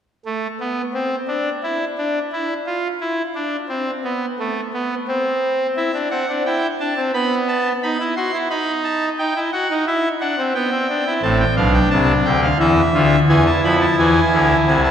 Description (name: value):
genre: classical, baroque-style 3-part fugue for pipe organ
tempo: 88 BPM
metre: 4/4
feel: straight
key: unclear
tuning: A4 = 441 Hz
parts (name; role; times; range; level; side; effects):
- pipe organ, trumpet; solo; 0.3-14.9 s; A1 to C6; -16 LUFS; equal; none
room: wet church reverb, RT60 2.9 s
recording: heard from further back in the room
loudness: -16 LUFS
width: side -9 dB against mid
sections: 0.3-14.9 A section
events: none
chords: 0.3 N.C.; 5.8 Em; 7.1 N.C.; 8.5 B7/D#; 9.9 Em; 11.2 Am; 12.6 N.C.; 14.0 E7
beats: | 0.26 0.95 1.64 2.32 | 3.01 3.70 4.38 5.07 | 5.76 6.45 7.14 7.82 | 8.51 9.19 9.87 10.56 | 11.24 11.93 12.61 13.30 | 13.98 14.66